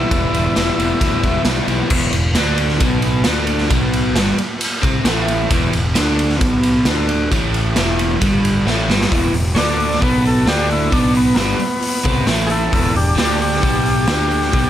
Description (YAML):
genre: garage rock duo or trio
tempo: 133 BPM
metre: 4/4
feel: straight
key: E minor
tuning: A4 = 445 Hz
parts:
  - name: overdriven combo organ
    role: melody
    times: 0.0-1.4, 9.5-14.7 s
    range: A#3 to D5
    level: -20 LUFS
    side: left 1 dB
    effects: none
  - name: crunchy overdriven guitar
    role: riff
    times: 0.0-14.7 s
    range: E2 to E4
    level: -18 LUFS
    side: equal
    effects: none
  - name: fuzz fingered electric bass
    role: bass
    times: 0.0-14.7 s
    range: E1 to D2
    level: -20 LUFS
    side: equal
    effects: overdrive
  - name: raw garage drum kit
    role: drums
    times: 0.1-14.6 s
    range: crash cymbal, hi-hat, kick drum, ride cymbal, snare drum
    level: -18 LUFS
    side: equal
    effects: none
room: light reverb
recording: none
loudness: -14 LUFS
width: side -11 dB against mid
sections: 0.0-1.9 A section; 1.9-9.1 B section; 9.1-14.7 C section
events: drum fill 8.7-9.1; transistor combo organ solo 9.1-14.7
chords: 0.0 Em